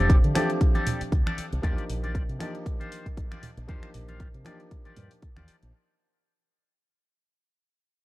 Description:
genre	nu-disco, nu disco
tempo	117 BPM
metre	4/4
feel	swing 56% on 16ths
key	unclear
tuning	A4 = 441 Hz
part	clear concert grand piano	accompaniment	0.0-5.7 s	F3 to G4	-33 LUFS	equal	tape echo
part	twangy electric guitar	riff	0.0-5.6 s	F4 to F5	-34 LUFS	left 2 dB	analog chorus, low-pass filter, tape echo
part	fingered electric bass with an envelope filter	bass	0.0-5.7 s	F1 to D3	-29 LUFS	equal	none
part	electronic kick drum	drums	0.1-5.3 s	none	-24 LUFS	equal	none
part	house drum kit	drums	0.1-5.7 s	finger snaps, hi-hat	-39 LUFS	left 1 dB	none
part	congas	percussion	0.4-5.5 s	none	-35 LUFS	right 2 dB	none
room	little or no reverb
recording	dark, warm production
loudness	-24 LUFS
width	side -18 dB against mid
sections	0.0-5.7 A section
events	fade-out 0.0-5.7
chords	0.0 F69; 1.6 Ebmaj9

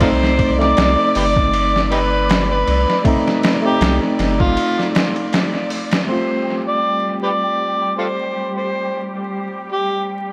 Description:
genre	trip hop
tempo	79 BPM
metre	4/4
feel	swing 56% on 16ths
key	unclear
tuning	A4 = 443 Hz
part	overdriven harmonica	melody	0.0-10.1 s	Eb4 to D5	-22 LUFS	equal	dub echo
part	tine electric piano	accompaniment	0.0-10.3 s	A3 to F4	-24 LUFS	equal	harmonic tremolo, low-pass filter, dub echo
part	clear studio string section	sustained chords	0.0-10.3 s	G3 to D5	-28 LUFS	equal	low-pass filter
part	round analog bass	bass	0.0-4.6 s	G1 to C2	-23 LUFS	equal	none
part	trip hop sampler-style drum kit	drums	0.0-6.1 s	hi-hat, kick drum, ride cymbal, snare drum	-22 LUFS	equal	overdrive, dub echo
room	light reverb, digital ambience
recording	echo-heavy mix, vinyl crackle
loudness	-18 LUFS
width	mono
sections	0.0-6.1 A section; 6.1-10.3 B section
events	filter sweep on tine electric piano 0.0-6.1, 6.1-10.3; break 4.6-6.1; filter sweep on string section 6.1-10.3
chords	0.0 Cm6; 6.1 F

